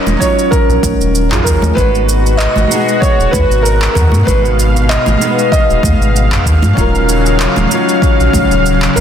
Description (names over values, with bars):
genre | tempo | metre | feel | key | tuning
sunset chillout | 96 BPM | 4/4 | swing 54% on 16ths | G# dorian | A4 = 442 Hz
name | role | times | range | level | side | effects
warm concert grand piano | melody | 0.0-9.0 s | A#4 to D#5 | -16 LUFS | right 1 dB | ping-pong delay
flamenco guitar | accompaniment | 0.0-9.0 s | F#3 to C#5 | -16 LUFS | left 2 dB | auto-pan, ping-pong delay
warm sub bass | bass | 0.1-9.0 s | D#1 to G#2 | -13 LUFS | equal | none
deep house drum kit | drums | 0.1-9.0 s | handclaps, shaker, toms | -20 LUFS | right 1 dB | none
congas | percussion | 0.1-9.0 s | none | -22 LUFS | right 1 dB | none
electronic kick drum | drums | 0.2-8.5 s | none | -15 LUFS | equal | none
lush unison pad | sustained chords | 1.8-9.0 s | B2 to E#5 | -17 LUFS | equal | chorus
room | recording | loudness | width
moderate lush hall reverb, RT60 2.5 s | dense, heavily limited modern master | -9 LUFS | side -9 dB against mid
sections
0.0-9.0 A section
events
none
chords
0.0 D#m9; 1.8 G#m7; 6.8 D#m9